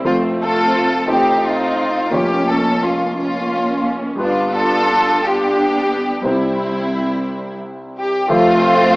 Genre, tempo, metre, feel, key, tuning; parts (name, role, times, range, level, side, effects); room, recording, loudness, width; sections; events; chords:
gospel; 58 BPM (dotted quarters); 6/8; straight; F major; A4 = 443 Hz
warm grand piano; accompaniment; 0.0-9.0 s; F1 to E5; -21 LUFS; equal
warm studio string section; melody; 0.1-9.0 s; G3 to A4; -15 LUFS; equal; slapback echo
light reverb, studio reverb; rough home demo mix, small speaker sound; -14 LUFS; side -24 dB against mid
0.0-8.3 A section
0.0 F; 1.1 F7/A; 2.1 Bbm/F; 4.2 G7; 6.2 C; 8.3 Fmaj7